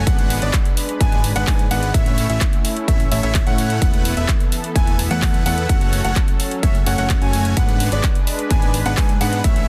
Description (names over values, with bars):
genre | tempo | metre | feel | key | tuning
EDM, festival progressive house | 128 BPM | 4/4 | straight | unclear | A4 = 440 Hz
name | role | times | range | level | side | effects
lush unison pad | sustained chords | 0.0-9.7 s | E3 to B4 | -31 LUFS | equal | chorus, sidechain pumping
clear concert grand piano | arpeggios | 0.0-9.7 s | D5 to G#5 | -29 LUFS | equal | sidechain pumping, dub echo
dense compressed supersaw | riff | 0.0-9.7 s | G#3 to G#5 | -27 LUFS | equal | sidechain pumping, dub echo
fat analog bass | bass | 0.0-9.7 s | E1 to A2 | -24 LUFS | equal | sidechain pumping
big-room dance drum kit | drums | 0.1-9.7 s | handclaps, hi-hat | -28 LUFS | equal | none
electronic kick drum | drums | 0.1-9.5 s | none | -20 LUFS | equal | none
room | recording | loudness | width
digital ambience | dense, heavily limited modern master | -18 LUFS | mono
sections
0.0-9.7 A section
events
none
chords
0.1 G#dim; 1.9 A; 3.8 Esus4; 5.7 F#m; 7.6 G#dim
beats
| 0.07 0.54 1.00 1.47 | 1.94 2.41 2.88 3.35 | 3.82 4.29 4.75 5.22 | 5.69 6.16 6.63 7.10 | 7.57 8.04 8.51 8.97 | 9.44